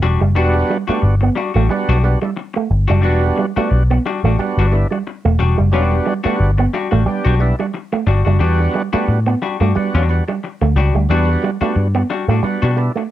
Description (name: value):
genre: funk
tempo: 90 BPM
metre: 4/4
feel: swing 56% on 16ths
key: E minor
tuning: A4 = 440 Hz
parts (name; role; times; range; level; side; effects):
- semi-hollow electric guitar; accompaniment; 0.0-13.0 s; G3 to F#4; -22 LUFS; left 6 dB; none
- electric guitar with an envelope filter; riff; 0.0-13.1 s; G3 to B3; -21 LUFS; right 6 dB; none
- vintage muted picked electric bass; bass; 0.0-12.9 s; E1 to B2; -14 LUFS; equal; none
- percussive tonewheel organ; stabs; 0.4-13.0 s; G3 to G4; -21 LUFS; right 3 dB; overdrive, slow rotary speaker
room: light reverb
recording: dark, warm production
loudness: -14 LUFS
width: side -13 dB against mid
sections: 0.0-13.1 A section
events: none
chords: 0.0 Em9